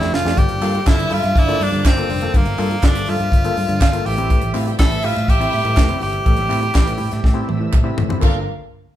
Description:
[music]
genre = disco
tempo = 122 BPM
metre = 4/4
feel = straight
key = G dorian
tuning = A4 = 439 Hz
[part]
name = edgy tenor saxophone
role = melody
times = 0.0-7.7 s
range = Bb3 to A4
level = -22 LUFS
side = equal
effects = none
[part]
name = dark studio string section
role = second line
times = 0.0-8.5 s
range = D4 to A5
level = -26 LUFS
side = right 1 dB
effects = none
[part]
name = auto-wah clav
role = accompaniment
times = 0.0-8.4 s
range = G2 to A4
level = -25 LUFS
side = left 3 dB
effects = overdrive
[part]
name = overdriven tonewheel organ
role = sustained chords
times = 0.0-8.5 s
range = C3 to E5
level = -31 LUFS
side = right 1 dB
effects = chorus vibrato, slow rotary speaker
[part]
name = fingered electric bass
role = bass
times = 0.0-8.5 s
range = F1 to A2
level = -22 LUFS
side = equal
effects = none
[part]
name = tight funk drum kit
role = drums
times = 0.0-8.3 s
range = crash cymbal, handclaps, hi-hat, kick drum, snare drum, toms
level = -17 LUFS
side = equal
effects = none
[part]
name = group handclap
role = percussion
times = 0.6-8.5 s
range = none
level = -33 LUFS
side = right 4 dB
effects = none
[sound]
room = moderate large studio reverb, RT60 0.8 s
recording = band playing live in one room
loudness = -15 LUFS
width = side -12 dB against mid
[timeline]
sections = 0.4-8.2 A section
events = drum fill 0.0-0.4, 7.2-8.2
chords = 0.4 Gm7; 4.0 Am7; 8.2 Gm7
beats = | 0.37 0.86 1.35 1.84 | 2.33 2.82 3.31 3.81 | 4.30 4.79 5.28 5.77 | 6.26 6.75 7.24 7.73 | 8.22

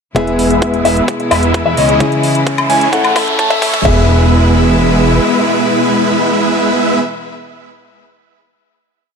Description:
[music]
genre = EDM, festival progressive house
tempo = 130 BPM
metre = 4/4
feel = straight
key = E major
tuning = A4 = 440 Hz
[part]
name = fingerpicked plugged-in steel-string acoustic guitar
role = accompaniment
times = 0.1-7.0 s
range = A2 to A4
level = -19 LUFS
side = left 3 dB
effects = vintage 12-bit sampler grit, sidechain pumping, ping-pong delay
[part]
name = clear studio string section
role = sustained chords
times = 0.2-7.0 s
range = B2 to E4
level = -19 LUFS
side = equal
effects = sidechain pumping
[part]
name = dark concert grand piano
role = arpeggios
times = 0.2-7.0 s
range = D#5 to A5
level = -17 LUFS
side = left 2 dB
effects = sidechain pumping, ping-pong delay
[part]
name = big supersaw lead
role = riff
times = 0.2-7.0 s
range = G#3 to A5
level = -14 LUFS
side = right 1 dB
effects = sidechain pumping, low-pass filter, ping-pong delay
[part]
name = fat analog bass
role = bass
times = 0.2-5.2 s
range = E1 to A2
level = -15 LUFS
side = right 1 dB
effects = sidechain pumping
[part]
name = electronic kick drum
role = drums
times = 0.2-3.9 s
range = none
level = -15 LUFS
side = right 1 dB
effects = overdrive, high-pass filter on kick
[part]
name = house drum kit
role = drums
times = 0.2-3.9 s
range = crash cymbal, hi-hat, woodblock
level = -21 LUFS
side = left 3 dB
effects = overdrive
[part]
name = riser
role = sound effects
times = 1.7-3.9 s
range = none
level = -22 LUFS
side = equal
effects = none
[sound]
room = light reverb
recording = dark, warm production, high-pass filter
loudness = -10 LUFS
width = side -6 dB against mid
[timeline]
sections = 0.2-3.9 build; 3.9-7.5 final chord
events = build-up 0.2-3.9; filter sweep on supersaw synth 0.2-3.9; filter sweep 0.2-3.9; riser 1.7-3.9; drum fill 2.0-3.9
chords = 0.2 E; 2.0 C#m; 2.9 A; 3.9 E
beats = | 0.16 0.62 1.08 1.54 | 2.01 2.47 2.93 3.39 | 3.85 4.31 4.78 5.24 | 5.70 6.16 6.62

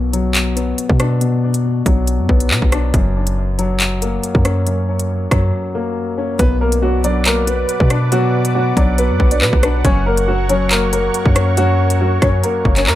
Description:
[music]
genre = hip hop, drill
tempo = 139 BPM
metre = 4/4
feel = half-time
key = B harmonic minor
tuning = A4 = 440 Hz
[part]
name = dark grand piano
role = accompaniment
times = 0.0-13.0 s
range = F#2 to D4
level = -20 LUFS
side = left 3 dB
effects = low-pass filter, dub echo
[part]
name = hard-hitting 808-style bass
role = bass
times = 0.0-13.0 s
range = F#1 to B2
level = -17 LUFS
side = equal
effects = none
[part]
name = drill drum kit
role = drums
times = 0.1-13.0 s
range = handclaps, hi-hat, kick drum, rim click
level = -17 LUFS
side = equal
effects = none
[part]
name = warm upright piano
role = melody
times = 6.4-13.0 s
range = F#3 to D5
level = -18 LUFS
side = equal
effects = low-pass filter, dub echo
[part]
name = warm analog pad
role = sustained chords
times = 6.8-13.0 s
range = A#4 to D6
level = -25 LUFS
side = right 3 dB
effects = chorus
[sound]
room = digital ambience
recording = echo-heavy mix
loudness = -13 LUFS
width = side -13 dB against mid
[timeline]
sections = 0.0-6.4 A section; 6.4-13.0 B section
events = break 5.5-6.4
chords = 0.0 Bm; 2.9 F#; 6.4 Bm; 9.8 F#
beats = 0.35 0.78 | 1.21 1.65 2.08 2.51 | 2.94 3.37 3.80 4.24 | 4.67 5.10 5.53 5.96 | 6.39 6.83 7.26 7.69 | 8.12 8.55 8.98 9.41 | 9.85 10.28 10.71 11.14 | 11.57 12.00 12.44 12.87

